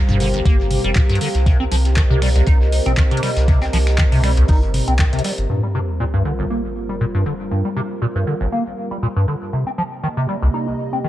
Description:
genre	acid house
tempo	119 BPM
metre	4/4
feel	swing 54% on 16ths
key	G minor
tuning	A4 = 440 Hz
part	dark analog pad	sustained chords	0.0-11.1 s	C3 to Eb5	-27 LUFS	right 1 dB	chorus, sidechain pumping
part	round analog bass	bass	0.0-5.5 s	F1 to C2	-18 LUFS	equal	sidechain pumping
part	deep dark ambient pad	texture	0.0-11.1 s	G4 to Bb5	-29 LUFS	right 1 dB	chorus, built-in reverb, sidechain pumping
part	liquid acid bass	riff	0.1-11.1 s	G1 to Eb4	-20 LUFS	equal	phaser, overdrive, lush chorus, sidechain pumping, digital delay
part	booming analog drum machine	drums	0.1-5.5 s	finger snaps, handclaps, hi-hat, toms	-24 LUFS	left 1 dB	studio reverb
part	cloth-damped thuddy drum kit	drums	0.1-5.4 s	hi-hat, snare drum	-36 LUFS	left 1 dB	none
part	electronic kick drum	drums	0.5-5.1 s	none	-15 LUFS	equal	studio reverb
part	sub drop	sound effects	5.5-7.5 s	none	-25 LUFS	equal	none
room	light reverb, digital ambience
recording	dark, warm production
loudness	-16 LUFS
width	side -14 dB against mid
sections	0.0-5.5 A section; 5.5-11.1 B section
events	impact 5.5-7.5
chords	0.0 Gm7; 1.5 Cm7; 5.5 Gm7; 9.5 Cm7

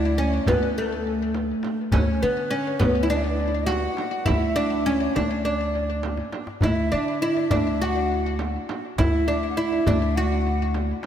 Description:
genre	Persian modal ensemble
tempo	102 BPM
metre	4/4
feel	straight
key	D dastgah mahur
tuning	A4 = 440 Hz
part	oud	melody	0.0-10.7 s	A3 to F#4	-24 LUFS	equal	ping-pong delay
part	bright reedy ney	second line	0.0-10.7 s	A4 to G5	-31 LUFS	left 2 dB	none
part	upright bass	bass	0.0-10.9 s	D2 to D3	-25 LUFS	equal	none
part	tombak	percussion	0.0-11.1 s	none	-27 LUFS	left 1 dB	none
part	frame drum	percussion	0.5-11.1 s	none	-33 LUFS	right 6 dB	none
room	moderate lush hall reverb, RT60 3.2 s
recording	dreamy mix soaked in reverb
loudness	-21 LUFS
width	side -9 dB against mid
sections	0.0-11.1 A section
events	drum fill 6.0-6.6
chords	none

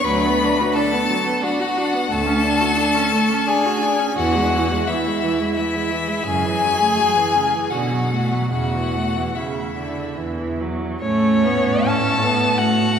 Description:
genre	classical, slow romantic movement for string quartet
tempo	68-89 BPM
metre	3/4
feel	rubato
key	A major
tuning	A4 = 438 Hz
part	rich violin	melody	0.0-13.0 s	C#4 to B5	-22 LUFS	left 5 dB	none
part	warm violin	second line	0.0-13.0 s	E4 to A5	-23 LUFS	left 1 dB	none
part	rich viola	accompaniment	0.0-13.0 s	C#3 to F#4	-22 LUFS	right 2 dB	none
part	warm cello	bass	0.0-13.0 s	D2 to B2	-24 LUFS	right 1 dB	none
room	wet church reverb, RT60 3.4 s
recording	recorded in a church or concert hall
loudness	-17 LUFS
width	side -8 dB against mid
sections	0.0-11.0 A section; 11.0-13.0 B section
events	none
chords	0.1 Bm/D; 2.1 Dmaj7; 4.2 E; 6.3 F#m7; 7.7 Bm7; 8.5 A/E; 10.2 Esus2; 11.0 A

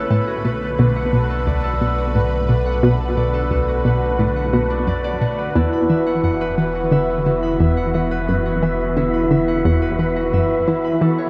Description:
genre	ambient, sequencer-driven space music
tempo	88 BPM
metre	4/4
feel	straight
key	unclear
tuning	A4 = 441 Hz
part	lush unison pad	sustained chords	0.0-11.3 s	C#3 to B4	-27 LUFS	equal	chorus, phaser
part	concert harp	arpeggios	0.0-11.3 s	C#4 to B5	-24 LUFS	equal	tape echo
part	round analog bass	bass	0.0-11.3 s	E1 to B1	-28 LUFS	equal	none
part	wind-like tuned noise texture	texture	0.0-11.3 s	B3 to E5	-35 LUFS	equal	none
part	analog pluck	riff	0.1-11.1 s	D2 to E3	-22 LUFS	equal	chorus, tape echo
room	wet plate reverb, RT60 2.4 s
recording	dreamy mix soaked in reverb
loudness	-19 LUFS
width	mono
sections	0.0-11.3 A section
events	filter sweep on synth arpeggio sound 0.0-11.3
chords	0.1 Bm7; 5.6 Esus2

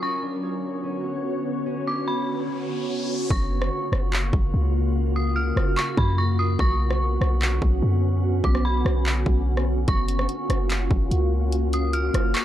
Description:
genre	hip hop, atmospheric cloud-rap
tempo	146 BPM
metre	4/4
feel	half-time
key	F# major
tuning	A4 = 439 Hz
part	dark detuned synth bell	melody	0.0-12.4 s	B5 to E#6	-30 LUFS	equal	chorus, low-pass filter, analog delay
part	glassy FM pad	sustained chords	0.0-12.4 s	C#3 to C#5	-27 LUFS	equal	ensemble chorus, built-in reverb, sidechain pumping
part	concert harp	arpeggios	0.0-5.4 s	C#4 to C#5	-33 LUFS	left 1 dB	low-pass filter, analog delay
part	riser	sound effects	2.1-3.3 s	none	-36 LUFS	left 1 dB	none
part	clean 808-style bass	bass	3.3-12.3 s	F#1 to F#2	-22 LUFS	equal	none
part	trap drum kit	drums	3.3-12.4 s	handclaps, hi-hat, kick drum, rim click	-25 LUFS	equal	none
room	little or no reverb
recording	dry, gritty hardware recording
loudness	-21 LUFS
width	side -12 dB against mid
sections	0.0-3.3 A section; 3.3-12.4 B section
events	riser 2.1-3.3; hi-hats muted 3.3-9.9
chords	0.0 Bmadd9; 3.3 F#maj7; 6.6 Bmadd9; 9.9 F#maj7

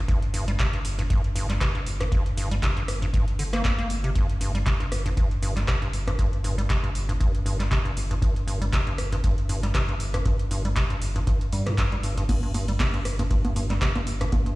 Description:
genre	acid house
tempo	118 BPM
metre	4/4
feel	swing 55% on 16ths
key	unclear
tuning	A4 = 439 Hz
part	round analog bass	bass	0.0-14.3 s	G1 to G2	-28 LUFS	equal	sidechain pumping
part	acid bass, square	riff	0.1-14.6 s	F2 to Bb3	-29 LUFS	equal	sidechain pumping, dub echo
part	booming analog drum machine	drums	0.1-14.6 s	congas, crash cymbal, handclaps, hi-hat, rim click	-31 LUFS	equal	none
part	electronic kick drum	drums	0.1-14.4 s	none	-25 LUFS	equal	none
room	light reverb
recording	played on a big sound system in a bare room, stone room reverb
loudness	-22 LUFS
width	side -20 dB against mid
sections	0.0-14.6 A section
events	filter sweep on acid bass 0.0-14.6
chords	none

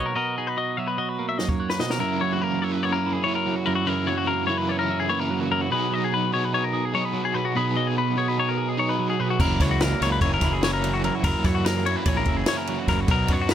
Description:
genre	math rock and midwest emo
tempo	293 BPM (eighths)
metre	9/8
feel	straight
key	unclear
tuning	A4 = 440 Hz
part	twangy electric guitar	melody	0.0-1.6 s	C#5 to D#5	-31 LUFS	left 1 dB	none
part	twelve-string electric guitar	accompaniment	0.0-13.5 s	F#2 to G#4	-27 LUFS	right 6 dB	none
part	clean electric guitar	arpeggios	0.0-13.5 s	F#4 to E5	-26 LUFS	left 7 dB	none
part	compact cocktail drum kit	drums	1.4-2.0, 9.4-13.5 s	crash cymbal, kick drum, ride cymbal, snare drum	-25 LUFS	equal	none
part	overdriven semi-hollow guitar	riff	2.0-13.5 s	F#2 to E4	-28 LUFS	equal	tremolo
part	fuzz fingered electric bass	bass	9.4-13.5 s	F#1 to F#2	-26 LUFS	equal	overdrive
room	little or no reverb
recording	none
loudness	-21 LUFS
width	side -10 dB against mid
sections	0.0-2.0 A section; 2.0-13.5 B section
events	drum fill 1.4-2.0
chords	0.0 Bmaj7; 2.0 F#7; 5.7 B6; 9.4 F#7

